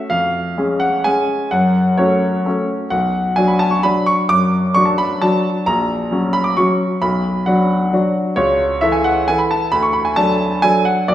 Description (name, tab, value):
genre	classical, piano waltz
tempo	131 BPM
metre	3/4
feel	uneven beats, rubato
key	F# minor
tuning	A4 = 439 Hz
part	clear grand piano	solo	0.0-11.1 s	A#1 to D6	-14 LUFS	equal	none
room	wet recital hall reverb, RT60 1.6 s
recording	heard from further back in the room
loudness	-14 LUFS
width	side -12 dB against mid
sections	0.0-11.1 A section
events	none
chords	0.1 C#/E#; 1.5 F#m; 2.9 Bm; 5.7 F#/A#; 7.0 Bm; 8.4 A/C#; 9.7 D